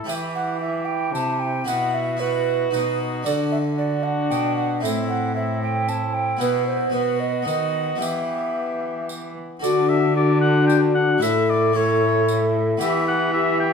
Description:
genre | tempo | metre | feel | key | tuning
classical, renaissance-style consort dance | 113 BPM | 3/4 | straight | E minor | A4 = 441 Hz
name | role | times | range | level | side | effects
bright oboe | melody | 0.0-13.7 s | E4 to G5 | -28 LUFS | left 4 dB | none
bright trombone | accompaniment | 0.0-13.7 s | B3 to E4 | -28 LUFS | left 3 dB | none
harpsichord | accompaniment | 0.0-13.7 s | A2 to B4 | -29 LUFS | left 1 dB | none
rich cello | bass | 0.0-13.7 s | A2 to E3 | -25 LUFS | right 1 dB | none
mellow hollow tenor recorder | second line | 0.1-13.7 s | F#4 to A5 | -23 LUFS | right 1 dB | none
tambourine | percussion | 0.1-13.1 s | none | -38 LUFS | right 4 dB | none
room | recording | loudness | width
wet stone room reverb, RT60 1.1 s | minimal, uncompressed stereo recording | -19 LUFS | side -6 dB against mid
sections
0.0-9.6 A section; 9.6-13.7 A section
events
none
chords
0.1 Em; 1.7 Bsus4; 2.7 B; 3.3 D; 4.8 Am; 6.4 Bsus4; 6.9 B; 8.0 Em; 9.6 D; 11.2 A; 12.8 Em

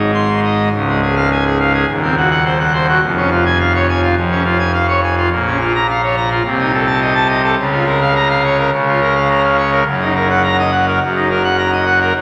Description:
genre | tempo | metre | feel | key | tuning
classical, organ toccata | 105 BPM | 4/4 | straight | Db major | A4 = 440 Hz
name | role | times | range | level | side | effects
pipe organ, full organ | solo | 0.0-12.2 s | Db1 to C6 | -14 LUFS | equal | none
room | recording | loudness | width
wet cathedral reverb, RT60 4.6 s | none | -14 LUFS | mono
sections
0.7-12.2 A section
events
none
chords
0.0 Ab; 0.7 Db; 1.9 Cdim/Eb; 3.0 Db/F; 5.3 Bbm; 6.4 Adim/C; 7.6 Bbm/Db; 9.9 Ebm/Gb

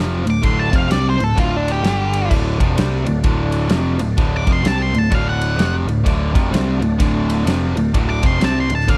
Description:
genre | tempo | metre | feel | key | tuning
blues rock power trio and southern rock | 128 BPM | 4/4 | swing 62% on 8ths | D major | A4 = 440 Hz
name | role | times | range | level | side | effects
overdriven tonewheel organ | sustained chords | 0.0-9.0 s | A3 to D5 | -34 LUFS | equal | none
distorted electric guitar | riff | 0.0-9.0 s | D2 to C4 | -23 LUFS | equal | overdrive
overdriven picked electric bass | bass | 0.0-9.0 s | D1 to C2 | -23 LUFS | equal | none
octave-fuzz lead guitar | melody | 0.3-9.0 s | D4 to D6 | -24 LUFS | equal | distortion, slapback echo
big rock drum kit | drums | 0.3-9.0 s | crash cymbal, kick drum, ride cymbal, snare drum | -22 LUFS | equal | none
room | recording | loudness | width
light reverb | dry, close 1970s-style studio recording | -17 LUFS | mono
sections
0.0-9.0 A section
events
lead electric guitar solo 0.0-9.0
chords
0.0 D; 1.8 G5; 2.3 D

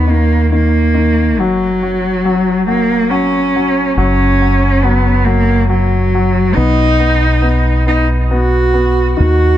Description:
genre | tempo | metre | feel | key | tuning
six-eight pop ballad | 46 BPM (dotted quarters) | 6/8 | straight | F# major | A4 = 440 Hz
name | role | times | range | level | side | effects
warm cello | melody | 0.0-9.6 s | F#3 to F#4 | -14 LUFS | right 1 dB | tape echo
clear concert grand piano | accompaniment | 0.0-9.6 s | D#3 to B3 | -19 LUFS | left 4 dB | none
fingered electric bass | bass | 0.0-9.6 s | F#1 to D#2 | -14 LUFS | equal | none
room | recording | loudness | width
light reverb, small room ambience | none | -10 LUFS | side -12 dB against mid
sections
0.0-9.6 A section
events
none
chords
0.0 D#5; 1.4 F#5; 6.6 B

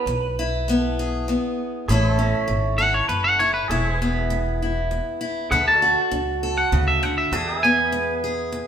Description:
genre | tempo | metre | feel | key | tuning
honky-tonk and classic country | 99 BPM | 3/4 | straight | A major | A4 = 440 Hz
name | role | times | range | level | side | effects
electric guitar through a small old amp | second line | 0.0-1.2 s | B4 | -28 LUFS | right 5 dB | none
picked acoustic archtop guitar | accompaniment | 0.0-8.7 s | E2 to A4 | -24 LUFS | left 1 dB | none
pedal steel guitar | sustained chords | 0.0-8.7 s | F#4 to E5 | -30 LUFS | right 4 dB | none
upright bass | bass | 0.1-8.6 s | E1 to E2 | -25 LUFS | equal | none
twangy electric guitar | melody | 2.8-8.7 s | G#4 to A5 | -20 LUFS | equal | warbly pitch drift
room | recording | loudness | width
wet stone room reverb, RT60 1.3 s | band playing live in one room | -19 LUFS | side -8 dB against mid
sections
0.0-1.9 A section; 1.9-8.7 B section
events
clean electric guitar solo 0.0-1.9, 1.9-8.7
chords
0.0 E; 1.9 A; 3.7 E; 5.5 D; 7.3 E

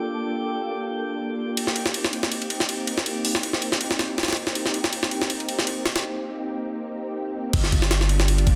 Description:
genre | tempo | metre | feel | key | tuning
drum and bass, jungle | 161 BPM | 4/4 | swing 54% on 16ths | unclear | A4 = 440 Hz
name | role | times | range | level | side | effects
soft string machine | sustained chords | 0.0-8.6 s | Bb3 to A4 | -32 LUFS | equal | ensemble chorus
drifting glass-harmonics texture | texture | 0.0-8.6 s | D4 to G5 | -38 LUFS | equal | chorus, built-in reverb
jungle sampler-style drum kit | drums | 1.6-8.6 s | crash cymbal, hi-hat, kick drum, ride cymbal, snare drum | -25 LUFS | equal | studio reverb
long sustained 808-style bass | bass | 7.5-8.6 s | G1 | -23 LUFS | equal | none
room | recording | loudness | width
moderate lush hall reverb, RT60 1.9 s, digital ambience | dense, heavily limited modern master | -25 LUFS | mono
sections
0.0-7.5 A section; 7.5-8.6 B section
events
break 6.0-7.5; drop 7.5-8.6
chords
0.0 Gm7; 1.6 Eb6; 7.5 Gm7

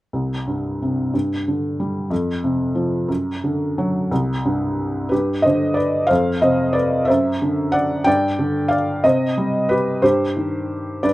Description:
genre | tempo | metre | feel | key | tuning
classical, lyrical solo piano | 61 BPM (dotted quarters) | 6/8 | rubato | C harmonic minor | A4 = 440 Hz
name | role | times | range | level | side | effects
felt-muted upright piano | solo | 0.1-11.1 s | C2 to G5 | -17 LUFS | equal | none
room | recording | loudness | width
little or no reverb | close, detailed microphones | -17 LUFS | side -17 dB against mid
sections
0.1-4.1 A section; 4.1-11.1 B section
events
none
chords
0.1 C5; 1.1 G5; 2.1 F5; 3.1 D/F#; 4.1 C5; 5.1 G; 6.1 F5; 7.1 D7/F#; 8.1 G5; 9.0 Cm; 10.0 Cm/G

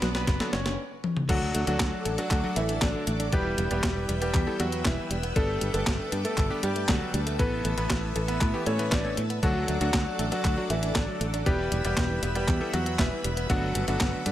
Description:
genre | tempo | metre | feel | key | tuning
italo disco | 118 BPM | 4/4 | straight | D major | A4 = 439 Hz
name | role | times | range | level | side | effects
bright grand piano | melody | 0.0-14.3 s | D3 to D5 | -31 LUFS | equal | digital delay
string machine, full ensemble | sustained chords | 0.0-14.3 s | A4 to E6 | -36 LUFS | equal | ensemble chorus
direct-recorded clean electric guitar | arpeggios | 0.0-14.3 s | B2 to D4 | -37 LUFS | right 3 dB | lush chorus, digital delay
bright electric grand piano | stabs | 0.0-14.3 s | E3 to C#5 | -34 LUFS | left 2 dB | none
fingered electric bass | bass | 0.0-14.3 s | E1 to A2 | -30 LUFS | equal | tube saturation
clean 12-bit digital drum machine | drums | 0.0-14.3 s | crash cymbal, handclaps, hi-hat, snare drum, toms | -30 LUFS | equal | overdrive, small room ambience
electronic kick drum | drums | 0.3-14.1 s | none | -28 LUFS | equal | overdrive, small room ambience
room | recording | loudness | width
light reverb | none | -24 LUFS | side -13 dB against mid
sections
0.0-1.3 A section; 1.3-14.3 B section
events
drum fill 0.0-0.8, 1.0; stop 0.8-1.3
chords
0.0 Bm; 1.3 D; 3.3 Em; 5.4 Gadd9; 7.4 Asus2; 9.4 D; 11.5 Em; 13.5 Gadd9

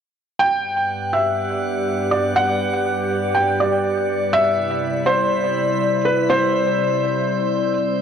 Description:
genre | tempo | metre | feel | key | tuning
hip hop | 122 BPM | 4/4 | half-time | G major | A4 = 442 Hz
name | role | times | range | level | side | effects
felt-muted upright piano | melody | 0.4-7.7 s | B4 to G5 | -20 LUFS | right 1 dB | low-pass filter, tape echo
warbly tape-like pad | sustained chords | 0.9-8.0 s | G2 to D5 | -21 LUFS | left 2 dB | chorus, built-in reverb
drifting glass-harmonics texture | texture | 0.7-8.0 s | B3 to F#6 | -27 LUFS | right 5 dB | chorus, built-in reverb
room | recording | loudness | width
light reverb, studio reverb | dry, gritty hardware recording | -17 LUFS | side -7 dB against mid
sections
0.4-8.0 A section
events
none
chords
0.4 Gmaj7; 4.3 Cmaj7

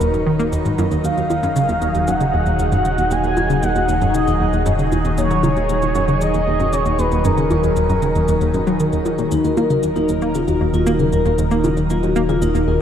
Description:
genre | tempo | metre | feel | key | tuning
ambient, sequencer-driven space music | 116 BPM | 4/4 | straight | Eb minor | A4 = 440 Hz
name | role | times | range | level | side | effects
expressive synth lead | melody | 0.0-9.1 s | Bb4 to Ab5 | -22 LUFS | equal | wide subtle chorus, shimmer reverb, tape echo
lush unison pad | sustained chords | 0.0-12.8 s | Eb3 to Bb5 | -21 LUFS | equal | chorus, phaser, shimmer reverb
analog pluck | riff | 0.0-12.8 s | Eb2 to Bb3 | -20 LUFS | equal | chorus, tape echo
warm sub bass | bass | 0.0-12.8 s | Eb1 | -24 LUFS | equal | none
cabasa and congas | percussion | 0.0-12.7 s | none | -29 LUFS | left 1 dB | tape echo
vibraphone with soft mallets | arpeggios | 9.3-12.7 s | Eb4 to Bb4 | -20 LUFS | left 3 dB | auto-pan, shimmer reverb, tape echo
room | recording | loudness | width
moderate plate reverb, RT60 3.1 s | echo-heavy mix, cassette tape, faint mains hum | -15 LUFS | side -9 dB against mid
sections
0.0-12.8 A section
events
none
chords
0.0 Ebm

